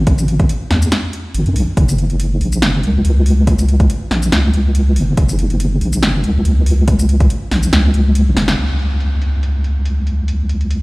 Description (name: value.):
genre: deep dubstep.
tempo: 141 BPM.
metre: 4/4.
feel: swing 54% on 16ths, half-time.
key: unclear.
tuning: A4 = 440 Hz.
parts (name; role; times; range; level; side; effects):
deep soft wobble bass; bass; 0.0-10.8 s; F#1 to F#2; -13 LUFS; equal; chorus.
deep house drum kit; drums; 0.1-10.8 s; hi-hat, shaker, snare drum; -21 LUFS; equal; overdrive, low-pass filter on hats, low-pass filter on perc, low-pass filter on snare.
electronic kick drum; drums; 0.1-7.3 s; none; -14 LUFS; equal; overdrive.
room: little or no reverb.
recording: played on a big sound system in a bare room, stone room reverb.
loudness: -12 LUFS.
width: side -24 dB against mid.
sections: 0.0-8.6 A section; 8.6-10.8 B section.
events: drum fill 8.4; band accent 8.5.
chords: none.